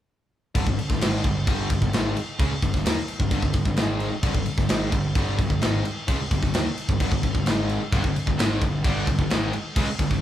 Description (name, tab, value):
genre	hard rock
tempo	130 BPM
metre	4/4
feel	straight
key	unclear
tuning	A4 = 440 Hz
part	overdriven semi-hollow guitar	riff	0.5-10.2 s	G2 to Bb3	-28 LUFS	left 4 dB	none
part	overdriven semi-hollow guitar	riff	0.6-10.2 s	G2 to Bb3	-30 LUFS	right 5 dB	none
part	fuzz picked electric bass	bass	0.6-10.2 s	G1 to Eb2	-30 LUFS	equal	overdrive
part	tight metal drum kit	drums	0.6-10.2 s	crash cymbal, kick drum, snare drum	-24 LUFS	equal	none
part	distorted electric guitar	riff	7.9-10.2 s	G2 to Ab3	-30 LUFS	equal	distortion
room	moderate large studio reverb, RT60 1.1 s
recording	band playing live in one room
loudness	-21 LUFS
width	side -12 dB against mid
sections	0.6-10.2 A section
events	none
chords	0.6 G5